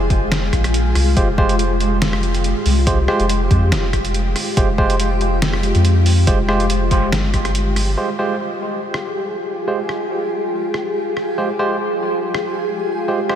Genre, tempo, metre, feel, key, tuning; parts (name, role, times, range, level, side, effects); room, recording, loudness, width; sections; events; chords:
deep dubstep; 141 BPM; 4/4; swing 54% on 16ths, half-time; F minor; A4 = 440 Hz
granular cloud pad; sustained chords; 0.0-13.4 s; Ab3 to Ab4; -21 LUFS; left 1 dB; built-in reverb
soft dub sub bass; bass; 0.0-8.0 s; F1 to F2; -18 LUFS; equal
electronic kick drum; drums; 0.1-7.4 s; -18 LUFS; equal; small room ambience
trip hop sampler-style drum kit; drums; 0.1-13.4 s; hi-hat, rim click, snare drum; -24 LUFS; equal; small room ambience
barky tine electric piano; stabs; 1.2-13.4 s; Ab3 to C5; -23 LUFS; right 2 dB; overdrive, auto-pan, low-pass filter, dub echo
moderate huge ambient reverb, RT60 6.1 s; dreamy mix soaked in reverb; -15 LUFS; side -10 dB against mid
0.0-8.0 A section; 8.0-13.4 B section
0.0 Fmadd9